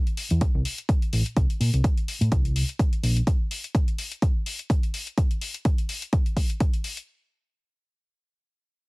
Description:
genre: filtered disco house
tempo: 126 BPM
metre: 4/4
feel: swing 55% on 16ths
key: unclear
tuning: A4 = 442 Hz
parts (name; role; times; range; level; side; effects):
- electronic hi-hat; drums; 0.1-7.1 s; none; -33 LUFS; left 3 dB; overdrive, sidechain pumping on hats, sidechain pumping on perc
- hollow-body short-scale fingered electric bass; bass; 0.3-3.2 s; A1 to Bb2; -22 LUFS; equal; sidechain pumping, low-pass filter
- electronic kick drum; drums; 0.4-6.7 s; none; -22 LUFS; equal; overdrive
room: little or no reverb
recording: heavily compressed radio sound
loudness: -22 LUFS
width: side -27 dB against mid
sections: 0.0-7.1 A section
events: none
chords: none

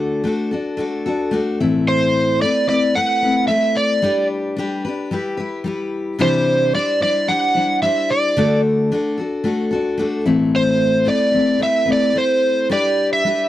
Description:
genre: rock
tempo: 111 BPM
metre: 4/4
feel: straight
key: A dorian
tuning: A4 = 439 Hz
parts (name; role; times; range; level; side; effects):
- picked steel-string acoustic guitar; accompaniment; 0.0-13.5 s; A2 to C5; -19 LUFS; left 2 dB; none
- overdriven slide guitar; melody; 1.9-13.5 s; C5 to F#5; -16 LUFS; right 2 dB; none
room: light reverb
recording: dry, close 1970s-style studio recording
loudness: -16 LUFS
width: side -13 dB against mid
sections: 0.0-13.5 A section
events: none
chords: 0.0 D; 1.6 Amadd9; 4.0 G; 5.1 Em; 6.2 Cadd9; 8.4 D; 10.3 Amadd9; 12.7 G

